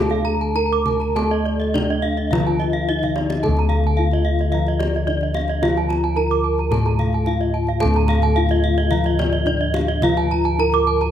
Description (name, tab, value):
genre	Balinese gamelan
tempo	109 BPM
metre	4/4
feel	straight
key	D pelog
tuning	A4 = 440 Hz
part	gamelan-type bronze metallophone	melody	0.0-11.1 s	D4 to Bb4-20c	-24 LUFS	left 1 dB	none
part	gamelan-type bronze metallophone	accompaniment	0.0-11.1 s	F3-30c to A3-30c	-27 LUFS	right 2 dB	none
part	gamelan-type bronze metallophone	arpeggios	0.0-11.0 s	D5 to Bb5-20c	-26 LUFS	left 4 dB	slapback echo
part	gamelan-type bossed gongs	bass	0.0-11.1 s	D2 to A4-30c	-20 LUFS	left 1 dB	none
part	gamelan-type bronze metallophone	arpeggios	0.1-11.1 s	Eb5+20c to D6	-26 LUFS	right 8 dB	none
part	kendang	percussion	0.1-11.1 s	none	-29 LUFS	left 1 dB	none
room	light reverb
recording	close, detailed microphones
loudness	-17 LUFS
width	side -10 dB against mid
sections	0.0-3.4 A section; 3.4-11.1 B section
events	drum fill 3.0-3.4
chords	none